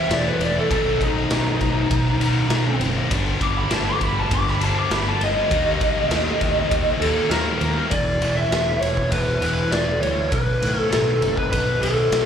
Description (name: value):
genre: quiet-loud alternative rock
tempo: 100 BPM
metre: 4/4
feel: straight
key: unclear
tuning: A4 = 439 Hz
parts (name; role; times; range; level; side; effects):
- lead guitar through a small cranked amp; melody; 0.0-12.3 s; D#4 to D6; -22 LUFS; left 1 dB; overdrive, plate reverb, slapback echo, tape echo
- distorted electric guitar; riff; 0.0-7.9 s; G2 to E4; -27 LUFS; left 12 dB; overdrive, slapback echo
- thick fuzz guitar; riff; 0.0-7.9 s; G2 to E4; -27 LUFS; right 5 dB; distortion
- fuzz fingered electric bass; bass; 0.1-12.3 s; E1 to A2; -25 LUFS; equal; overdrive
- raw garage drum kit; drums; 0.1-12.3 s; kick drum, ride cymbal, snare drum; -24 LUFS; equal; none
- clean electric guitar; arpeggios; 7.9-12.3 s; B2 to E4; -27 LUFS; right 2 dB; ensemble chorus, plate reverb, slapback echo, tape echo
room: light reverb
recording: live gig heard through the venue's PA, club reverb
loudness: -18 LUFS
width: side -8 dB against mid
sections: 0.0-7.9 A section; 7.9-12.3 B section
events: lead electric guitar solo 0.0-7.9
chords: 0.0 Em; 0.7 B; 3.1 G; 5.5 D#; 7.9 Em; 10.3 B